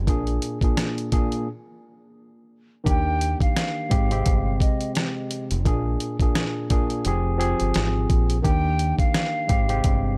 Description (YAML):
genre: hip hop, boom-bap hip-hop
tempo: 86 BPM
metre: 4/4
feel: swing 57% on 16ths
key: Eb major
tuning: A4 = 439 Hz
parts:
  - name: deep dub fingered electric bass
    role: bass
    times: 0.0-10.1 s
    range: F1 to Eb2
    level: -27 LUFS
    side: equal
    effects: none
  - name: tine electric piano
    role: accompaniment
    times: 0.1-10.2 s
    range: Ab2 to Ab4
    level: -29 LUFS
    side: equal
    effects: cassette tape, high-pass filter, low-pass filter
  - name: dusty soul sampler-style drum kit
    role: drums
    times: 0.1-10.0 s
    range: hi-hat, kick drum, rim click, snare drum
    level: -25 LUFS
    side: equal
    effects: none
  - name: breathy mellow silver concert flute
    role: melody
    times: 2.9-10.1 s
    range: Eb5 to G5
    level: -31 LUFS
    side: equal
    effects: high-pass filter, low-pass filter, delay
room: digital ambience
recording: none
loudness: -23 LUFS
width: mono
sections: 0.0-2.9 A section; 2.9-10.2 B section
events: break 1.5-2.9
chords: 0.1 Bb7; 1.5 N.C.; 2.9 Ebmaj7; 3.9 Abmaj7; 5.7 Bb7; 7.1 Fmadd9; 8.4 Ebmaj7; 9.5 Abmaj7